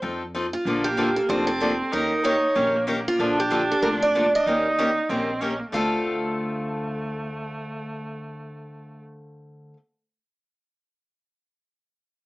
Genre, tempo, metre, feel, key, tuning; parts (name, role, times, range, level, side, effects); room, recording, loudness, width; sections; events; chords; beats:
acoustic string swing (jazz manouche); 190 BPM; 4/4; swing 59% on 8ths; D minor; A4 = 440 Hz
picked steel-string acoustic guitar; accompaniment; 0.0-9.8 s; D3 to Bb4; -27 LUFS; left 1 dB
upright bass; bass; 0.0-9.7 s; F1 to F2; -34 LUFS; equal
picked steel-string acoustic guitar; melody; 0.5-9.7 s; F4 to F5; -24 LUFS; right 1 dB
rich viola; second line; 0.7-9.0 s; A3 to Eb4; -28 LUFS; right 1 dB
moderate studio reverb, RT60 0.6 s; small speaker sound; -21 LUFS; side -20 dB against mid
0.7-5.7 A section; 5.7-8.3 B section
0.0 F7; 0.7 Bbmaj9; 1.9 Eb7; 3.2 Bbmaj7; 4.5 Eb7; 5.7 Dm7
0.03 0.35 | 0.66 0.98 1.29 1.61 | 1.93 2.24 2.56 2.88 | 3.19 3.51 3.83 4.14 | 4.46 4.78 5.09 5.41 | 5.73 6.04 6.36 6.68 | 7.00 7.31 7.63 7.95